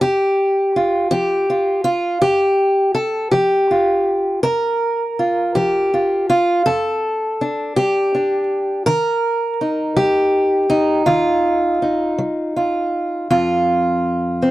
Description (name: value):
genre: folk, solo fingerstyle acoustic guitar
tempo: 54 BPM (dotted quarters)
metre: 6/8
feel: straight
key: unclear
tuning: A4 = 440 Hz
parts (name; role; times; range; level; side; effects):
- fingerpicked acoustic archtop guitar; solo; 0.0-14.5 s; F2 to Bb4; -15 LUFS; equal; none
room: little or no reverb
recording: dry, close 1970s-style studio recording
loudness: -15 LUFS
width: side -16 dB against mid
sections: 0.0-13.3 A section; 13.3-14.5 B section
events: none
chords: 0.0 N.C.; 6.7 Gsus2/F; 8.9 Ebadd9; 13.3 N.C.